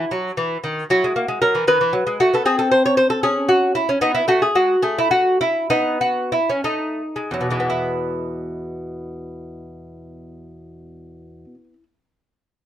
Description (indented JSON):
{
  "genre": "classical, baroque-style dance for lute",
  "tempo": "54-79 BPM (dotted quarters)",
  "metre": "6/8",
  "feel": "rubato",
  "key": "E major",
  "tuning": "A4 = 440 Hz",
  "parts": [
    { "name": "lute", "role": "solo", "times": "0.0-11.8 s", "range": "E2 to C#5", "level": "-18 LUFS", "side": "equal", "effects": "none" }
  ],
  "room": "light reverb",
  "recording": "dark, warm production",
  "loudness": "-17 LUFS",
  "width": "side -11 dB against mid",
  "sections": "0.0-7.7 A section; 7.7-12.0 B section",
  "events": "slowing down 3.2-7.7",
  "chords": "0.0 F#7(no3); 0.9 F#7; 1.7 B/D#; 2.4 N.C.; 4.0 G#m; 4.8 N.C.; 5.7 B7; 7.7 E",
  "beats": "0.12 | 0.91 1.68 | 2.45 3.23 | 4.02 4.83 | 5.70 6.65 | 7.70 8.77 | 9.87 10.94"
}